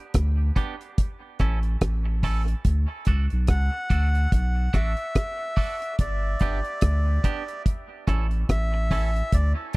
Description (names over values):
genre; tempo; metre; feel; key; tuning
dub reggae; 72 BPM; 4/4; swing 57% on 16ths; D major; A4 = 440 Hz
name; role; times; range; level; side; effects
soft dub sub bass; bass; 0.1-9.5 s; G1 to D2; -23 LUFS; equal; none
deep reggae drum kit; drums; 0.1-9.8 s; hi-hat, kick drum, rim click; -23 LUFS; equal; none
twangy electric guitar; accompaniment; 0.6-9.1 s; B3 to A4; -36 LUFS; right 5 dB; spring reverb, high-pass filter, dub echo
melodica; melody; 3.5-9.5 s; D5 to F#5; -31 LUFS; equal; dub echo
room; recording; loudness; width
small room reverb; dry, close 1970s-style studio recording; -22 LUFS; side -23 dB against mid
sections
0.0-9.8 A section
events
break 0.0-2.7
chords
0.0 G; 1.0 A; 2.7 D; 6.0 G; 7.7 A